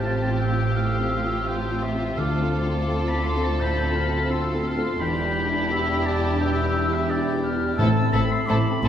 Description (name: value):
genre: cinematic, emotional film score for orchestra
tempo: 85 BPM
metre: 4/4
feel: rubato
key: unclear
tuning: A4 = 440 Hz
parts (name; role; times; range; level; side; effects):
- rich symphonic violin section; melody; 0.0-8.9 s; G4 to A4; -33 LUFS; left 2 dB; none
- hollow small flute group; second line; 0.0-8.9 s; C6 to G6; -32 LUFS; left 4 dB; none
- warm oboe; second line; 0.0-8.9 s; C5 to C6; -29 LUFS; equal; none
- warm symphonic violin section; second line; 0.0-8.9 s; E4 to F4; -34 LUFS; left 3 dB; none
- warm concert grand piano; accompaniment; 0.0-8.9 s; D2 to A4; -30 LUFS; left 1 dB; none
- warm symphonic viola section; accompaniment; 0.0-8.9 s; C4 to D4; -33 LUFS; equal; none
- mellow French horn section; sustained chords; 0.0-8.9 s; C3 to A4; -32 LUFS; equal; none
- concert harp; arpeggios; 0.0-8.9 s; A2 to A4; -34 LUFS; left 5 dB; none
- dark symphonic cello section; bass; 0.0-8.9 s; D2 to A2; -29 LUFS; right 2 dB; none
- rich symphonic double bass section; bass; 0.0-8.9 s; E1 to D2; -27 LUFS; right 2 dB; none
- timpani; percussion; 0.0-0.4, 7.8-8.8 s; A2; -26 LUFS; left 1 dB; none
room: wet scoring stage reverb, RT60 1.5 s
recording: heard from further back in the room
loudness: -21 LUFS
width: side -9 dB against mid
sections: 0.0-8.9 A section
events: none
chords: 0.0 Fadd9/A; 2.2 Dm7; 5.0 Em7; 7.8 Amadd9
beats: 0.04 0.76 1.48 | 2.18 2.89 3.60 4.30 | 5.01 5.71 6.41 7.10 | 7.79 8.49